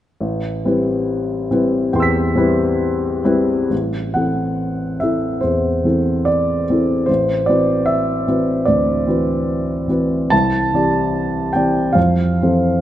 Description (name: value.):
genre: classical, impressionist solo piano.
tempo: 62-76 BPM.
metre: 4/4.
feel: rubato.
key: A minor.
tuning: A4 = 440 Hz.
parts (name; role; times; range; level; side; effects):
clear grand piano; solo; 0.2-12.8 s; A1 to B6; -15 LUFS; equal; none.
room: moderate recital hall reverb, RT60 1.8 s.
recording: nothing above 10.6 kHz.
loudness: -15 LUFS.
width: side -12 dB against mid.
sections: 0.2-3.7 A section; 3.7-12.8 B section.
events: none.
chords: 0.2 Am9; 3.7 Am6; 7.1 D13/A; 10.3 Cadd9; 12.0 Fmaj7.